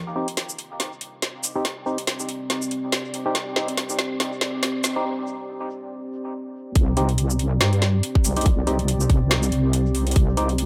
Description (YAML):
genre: deep dubstep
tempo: 141 BPM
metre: 4/4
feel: swing 57% on 16ths, half-time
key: C minor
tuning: A4 = 440 Hz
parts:
  - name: deep dark ambient pad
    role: sustained chords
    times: 0.0-10.7 s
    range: C4 to D5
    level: -32 LUFS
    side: equal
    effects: chorus, built-in reverb
  - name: percussive organ stab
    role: stabs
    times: 0.2-10.5 s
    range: C4 to G4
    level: -31 LUFS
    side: equal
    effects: chorus, cassette tape, dub echo
  - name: garage drum kit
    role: drums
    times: 0.3-10.7 s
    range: hi-hat, shaker, snare drum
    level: -27 LUFS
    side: equal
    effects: overdrive, high-pass filter on hats, high-pass filter on perc, high-pass filter on snare
  - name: wobble bass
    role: bass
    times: 6.8-10.7 s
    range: C2 to G2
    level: -23 LUFS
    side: equal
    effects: chorus
  - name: electronic kick drum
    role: drums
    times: 6.8-10.3 s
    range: none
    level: -20 LUFS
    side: equal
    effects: none
room: moderate spring reverb, RT60 2.0 s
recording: echo-heavy mix, high-pass filter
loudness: -23 LUFS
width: mono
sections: 0.0-6.8 A section; 6.8-10.7 B section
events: build-up 0.0-6.8; drum fill 0.0-5.1; filter sweep on synth stab 0.0-6.8; filter sweep 0.0-6.8; break 5.1-6.8; drop 6.8-10.7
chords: 0.0 Cm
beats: 0.37 0.80 1.22 | 1.65 2.07 2.50 2.92 | 3.35 3.78 4.20 4.63 | 5.05 5.48 5.90 6.33 | 6.75 7.18 7.61 8.03 | 8.46 8.88 9.31 9.73 | 10.16 10.59